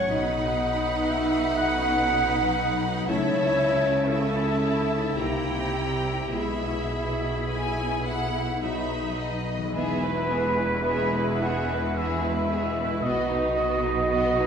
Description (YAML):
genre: classical, slow romantic movement for symphony orchestra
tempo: 50-62 BPM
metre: 3/4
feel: rubato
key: E major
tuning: A4 = 440 Hz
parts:
  - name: dark symphonic violin section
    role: melody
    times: 0.0-14.5 s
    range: B4 to B5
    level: -36 LUFS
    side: left 1 dB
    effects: none
  - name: rich symphonic violin section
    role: second line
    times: 0.0-14.5 s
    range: D#4 to G#5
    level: -32 LUFS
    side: left 1 dB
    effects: none
  - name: warm clarinet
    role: second line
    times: 0.0-14.5 s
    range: E4 to F#5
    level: -29 LUFS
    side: left 1 dB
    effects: none
  - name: rich symphonic viola section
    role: accompaniment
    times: 0.0-14.5 s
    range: B3 to E4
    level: -32 LUFS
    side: right 2 dB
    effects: none
  - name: concert harp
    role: arpeggios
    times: 0.0-14.5 s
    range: A2 to B4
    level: -32 LUFS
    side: left 4 dB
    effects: none
  - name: rich symphonic cello section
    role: bass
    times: 0.0-14.5 s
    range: E2 to C#3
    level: -32 LUFS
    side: right 3 dB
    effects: none
  - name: rich symphonic double bass section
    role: bass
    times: 0.0-14.5 s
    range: E1 to C#2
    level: -32 LUFS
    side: right 2 dB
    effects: none
  - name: mellow French horn section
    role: sustained chords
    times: 0.1-14.5 s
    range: F#3 to F#4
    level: -33 LUFS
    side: left 2 dB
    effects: none
  - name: concert flute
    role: second line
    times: 9.8-14.5 s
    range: B4 to F#5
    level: -31 LUFS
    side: right 2 dB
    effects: none
  - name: dark cor anglais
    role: second line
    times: 9.8-14.5 s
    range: B4 to F#5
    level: -29 LUFS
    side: right 1 dB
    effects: none
room: wet recital hall reverb, RT60 1.3 s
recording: recorded in a church or concert hall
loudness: -23 LUFS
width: side -7 dB against mid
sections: 0.0-9.7 A section; 9.7-14.5 B section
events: none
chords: 0.1 B; 3.1 A/C#; 5.2 C7; 6.3 E/B; 8.6 B; 9.7 E; 13.0 B